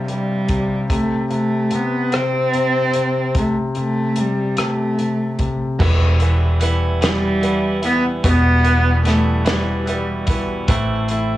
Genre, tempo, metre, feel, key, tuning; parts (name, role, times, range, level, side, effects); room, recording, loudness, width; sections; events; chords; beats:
six-eight pop ballad; 49 BPM (dotted quarters); 6/8; straight; A4 = 440 Hz
warm cello; melody; 0.0-10.4 s; G3 to C4; -19 LUFS; equal
clear baby grand piano; accompaniment; 0.0-11.4 s; G2 to E4; -23 LUFS; left 2 dB
loose indie drum kit; drums; 0.1-11.3 s; crash cymbal, hi-hat, kick drum, rim click, snare drum; -22 LUFS; equal
direct-recorded clean electric guitar; arpeggios; 5.8-11.4 s; E2 to E4; -24 LUFS; right 5 dB
vintage muted fingered electric bass; bass; 5.8-11.4 s; E1 to A1; -18 LUFS; equal
little or no reverb; worn, warbling old tape, cassette tape, warbly pitch drift, small room ambience; -16 LUFS; side -15 dB against mid
0.0-5.8 A section; 5.8-11.4 B section
0.0 C5; 0.9 N.C.; 5.8 Em; 10.7 Am
| 0.90 2.13 | 3.35 4.58 | 5.80 7.02 | 8.24 9.46 | 10.69